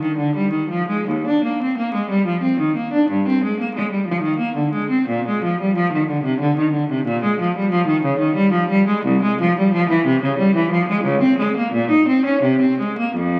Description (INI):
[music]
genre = classical, baroque-style suite movement for unaccompanied cello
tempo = 77-95 BPM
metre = 3/4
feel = rubato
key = unclear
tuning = A4 = 441 Hz
[part]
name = rich cello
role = solo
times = 0.0-13.4 s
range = C2 to Eb4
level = -19 LUFS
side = equal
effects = none
[sound]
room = wet recital hall reverb, RT60 1.5 s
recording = very old 78 rpm record, vinyl crackle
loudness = -19 LUFS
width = mono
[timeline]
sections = 0.0-13.4 A section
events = none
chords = none